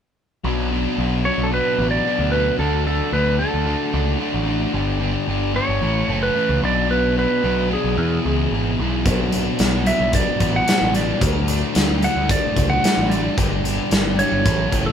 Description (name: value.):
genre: classic rock.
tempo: 111 BPM.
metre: 4/4.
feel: straight.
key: B minor.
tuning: A4 = 440 Hz.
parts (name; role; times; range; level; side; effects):
crunchy overdriven guitar; riff; 0.4-14.9 s; E2 to A4; -24 LUFS; left 7 dB; none.
sludgy distorted guitar; riff; 0.4-14.9 s; E2 to D4; -25 LUFS; right 6 dB; overdrive.
growling picked electric bass; bass; 0.4-14.9 s; F#1 to E2; -23 LUFS; equal; overdrive.
clean lap steel guitar; melody; 1.3-14.9 s; G#4 to F#5; -22 LUFS; right 2 dB; none.
big rock drum kit; drums; 9.1-14.9 s; hi-hat, kick drum, snare drum; -20 LUFS; equal; none.
room: moderate studio ambience, RT60 0.5 s.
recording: band playing live in one room.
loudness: -17 LUFS.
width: side -8 dB against mid.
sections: 0.4-14.9 A section.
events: none.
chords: 0.4 Bm; 2.6 D; 4.7 G; 5.8 A; 6.6 Bm; 8.0 E; 9.1 Bm; 11.2 D; 13.4 G.